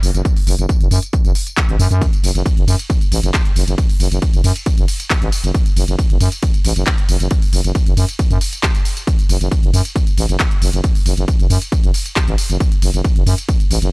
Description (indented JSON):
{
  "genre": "driving peak-time techno",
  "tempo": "136 BPM",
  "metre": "4/4",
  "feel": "straight",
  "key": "F# minor",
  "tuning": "A4 = 440 Hz",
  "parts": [
    { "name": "growling FM bass", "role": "bass", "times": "0.0-13.9 s", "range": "F#1 to F#2", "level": "-15 LUFS", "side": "equal", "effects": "sidechain pumping" },
    { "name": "techno drum kit", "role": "drums", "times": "0.0-13.9 s", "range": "handclaps, hi-hat, ride cymbal, tambourine", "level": "-23 LUFS", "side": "equal", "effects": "sidechain pumping on hats, sidechain pumping on perc, sidechain pumping on cymbals" },
    { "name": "electronic kick drum", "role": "drums", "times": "0.2-13.6 s", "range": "none", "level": "-16 LUFS", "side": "equal", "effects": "none" }
  ],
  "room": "little or no reverb",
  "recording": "dry, gritty hardware recording",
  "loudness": "-13 LUFS",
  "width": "side -31 dB against mid",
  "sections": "0.0-13.9 A section",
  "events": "none",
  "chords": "none"
}